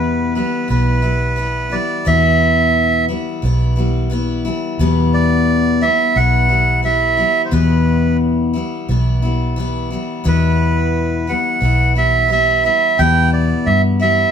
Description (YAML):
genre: honky-tonk and classic country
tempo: 88 BPM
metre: 4/4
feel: straight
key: E minor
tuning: A4 = 436 Hz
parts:
  - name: melodica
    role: melody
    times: 0.0-14.3 s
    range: B4 to G5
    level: -16 LUFS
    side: right 3 dB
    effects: none
  - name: picked steel-string acoustic guitar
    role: accompaniment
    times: 0.0-14.3 s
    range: E2 to E4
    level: -19 LUFS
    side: left 3 dB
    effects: none
  - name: vintage muted fingered electric bass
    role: bass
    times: 0.0-14.2 s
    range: B1 to G2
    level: -16 LUFS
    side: equal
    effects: none
room: moderate studio reverb, RT60 0.7 s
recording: band playing live in one room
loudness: -13 LUFS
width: side -8 dB against mid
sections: 0.0-14.3 A section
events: none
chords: 0.0 Em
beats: 0.02 0.70 1.38 | 2.07 2.75 3.43 4.12 | 4.80 5.48 6.17 6.85 | 7.53 8.21 8.89 9.58 | 10.26 10.94 11.62 12.30 | 12.99 13.67